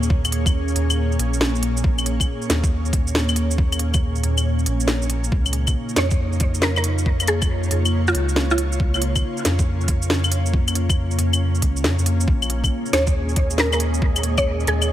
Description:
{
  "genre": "future garage",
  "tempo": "138 BPM",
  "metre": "4/4",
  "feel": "swing 65% on 16ths",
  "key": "Bb minor",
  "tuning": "A4 = 439 Hz",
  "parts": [
    { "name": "ethereal airy pad", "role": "sustained chords", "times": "0.0-14.9 s", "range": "Bb2 to Db5", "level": "-26 LUFS", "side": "equal", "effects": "ensemble chorus, built-in reverb, sidechain pumping" },
    { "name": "soft dub sub bass", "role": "bass", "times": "0.0-14.9 s", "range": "Bb1 to F2", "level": "-22 LUFS", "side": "equal", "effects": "tube saturation, sidechain pumping" },
    { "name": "organic electronic drum kit", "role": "drums", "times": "0.0-14.9 s", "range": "claves, hi-hat, shaker, snare drum", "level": "-24 LUFS", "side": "equal", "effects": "overdrive" },
    { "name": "electronic kick drum", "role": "drums", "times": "0.1-14.4 s", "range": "none", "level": "-20 LUFS", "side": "equal", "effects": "overdrive" },
    { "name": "mallet-like synth pluck", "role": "melody", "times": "6.0-8.9, 12.9-14.9 s", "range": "F4 to Db5", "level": "-24 LUFS", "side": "right 1 dB", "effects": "ensemble chorus, dub echo" },
    { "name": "wind-like tuned noise texture", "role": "texture", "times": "12.8-14.9 s", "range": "Ab3 to Ab4", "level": "-34 LUFS", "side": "right 1 dB", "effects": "built-in reverb" }
  ],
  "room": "light reverb, digital ambience",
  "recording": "none",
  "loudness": "-18 LUFS",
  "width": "side -12 dB against mid",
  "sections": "0.0-12.3 A section; 12.3-14.9 A section",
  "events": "none",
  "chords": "0.0 Bbm7; 5.3 Db6; 12.3 Bbm7"
}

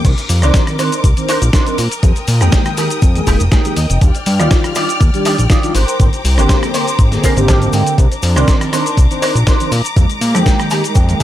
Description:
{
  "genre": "nu-disco, nu disco",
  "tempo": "121 BPM",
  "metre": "4/4",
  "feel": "straight",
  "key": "C minor",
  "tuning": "A4 = 440 Hz",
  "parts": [
    { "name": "mellow synth brass", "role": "accompaniment", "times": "0.0-11.2 s", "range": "D3 to G5", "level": "-19 LUFS", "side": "equal", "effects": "chorus, cassette tape, sidechain pumping, analog delay" },
    { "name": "clear symphonic string section", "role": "sustained chords", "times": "0.0-11.2 s", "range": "Ab3 to F6", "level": "-23 LUFS", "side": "left 2 dB", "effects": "sidechain pumping" },
    { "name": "electric guitar with an envelope filter", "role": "riff", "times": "0.0-11.2 s", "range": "D4 to Ab5", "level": "-21 LUFS", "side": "right 2 dB", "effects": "ensemble chorus" },
    { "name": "fat analog bass", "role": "bass", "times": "0.0-11.2 s", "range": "F1 to Bb2", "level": "-13 LUFS", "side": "equal", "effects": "none" },
    { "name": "dusty soul sampler-style drum kit", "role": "drums", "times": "0.0-11.2 s", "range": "crash cymbal, hi-hat, rim click, shaker, snare drum", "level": "-21 LUFS", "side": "left 1 dB", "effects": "small room ambience" },
    { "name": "electronic kick drum", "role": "drums", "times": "0.0-11.2 s", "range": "none", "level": "-12 LUFS", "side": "equal", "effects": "small room ambience" },
    { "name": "cabasa", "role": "percussion", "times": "0.0-11.2 s", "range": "none", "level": "-30 LUFS", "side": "left 3 dB", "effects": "none" }
  ],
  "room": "digital ambience",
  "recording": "none",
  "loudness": "-11 LUFS",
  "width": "side -13 dB against mid",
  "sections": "0.0-11.2 A section",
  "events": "clean electric guitar fill 3.3-4.0, 7.2-8.0, 10.5-11.2",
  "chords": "0.0 Cm9; 2.0 Fm11; 4.0 Ebmaj9; 5.8 Abmaj9#11; 8.0 Cm9; 10.0 Fm11"
}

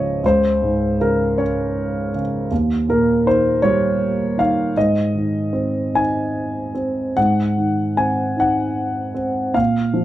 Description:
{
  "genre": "classical, lyrical solo piano",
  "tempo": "49-54 BPM (dotted quarters)",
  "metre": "6/8",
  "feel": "rubato",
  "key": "unclear",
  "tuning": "A4 = 441 Hz",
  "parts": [
    { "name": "dark grand piano", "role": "solo", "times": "0.0-10.0 s", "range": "Db2 to Ab5", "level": "-17 LUFS", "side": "equal", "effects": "none" }
  ],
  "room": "light reverb",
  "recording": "dark, warm production",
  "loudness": "-17 LUFS",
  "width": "side -14 dB against mid",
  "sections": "0.0-10.0 A section",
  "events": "none",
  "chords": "0.2 Bbm9/Db; 2.5 Eb7; 4.8 Ab"
}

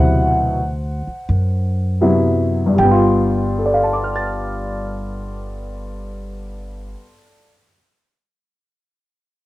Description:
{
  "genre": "jazz piano trio",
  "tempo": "75-96 BPM",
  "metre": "4/4",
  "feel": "swing 69% on 8ths",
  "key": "G mixolydian",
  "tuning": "A4 = 440 Hz",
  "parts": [
    { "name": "warm upright piano", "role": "melody", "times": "0.0-7.7 s", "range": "G2 to A6", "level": "-18 LUFS", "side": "left 1 dB", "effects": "cassette tape" },
    { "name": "upright bass", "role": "bass", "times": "0.0-6.9 s", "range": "G1 to F#2", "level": "-21 LUFS", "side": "equal", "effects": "none" }
  ],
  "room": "light reverb",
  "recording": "home recording on cassette",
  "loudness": "-15 LUFS",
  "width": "side -17 dB against mid",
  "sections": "0.0-2.8 A section; 2.8-6.0 B section",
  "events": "slowing down 0.0-2.8",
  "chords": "0.0 D13; 2.8 G7"
}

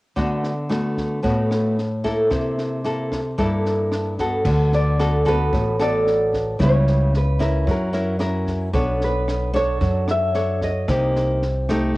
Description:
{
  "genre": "bossa nova",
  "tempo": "112 BPM",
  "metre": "4/4",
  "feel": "straight",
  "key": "D major",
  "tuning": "A4 = 439 Hz",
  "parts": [
    { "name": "nylon-string guitar", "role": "accompaniment", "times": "0.2-12.0 s", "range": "G2 to C#5", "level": "-21 LUFS", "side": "equal", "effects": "cassette tape" },
    { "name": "compact cocktail drum kit", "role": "drums", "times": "0.2-12.0 s", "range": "crash cymbal, kick drum, rim click, snare drum", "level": "-30 LUFS", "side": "equal", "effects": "cassette tape" },
    { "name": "upright bass", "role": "bass", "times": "4.4-11.9 s", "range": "A1 to F#2", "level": "-22 LUFS", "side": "equal", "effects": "none" },
    { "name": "nylon-string guitar", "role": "melody", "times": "4.7-11.4 s", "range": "A#4 to E5", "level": "-25 LUFS", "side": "equal", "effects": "cassette tape" }
  ],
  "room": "light reverb",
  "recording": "home recording on cassette",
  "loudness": "-18 LUFS",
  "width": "side -20 dB against mid",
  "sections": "0.2-4.5 A section; 4.5-12.0 B section",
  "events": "none",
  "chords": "0.2 D6; 2.3 C6; 4.5 D6; 6.6 C#m7b5; 7.7 F#7; 8.7 Bm9; 10.9 Cm7"
}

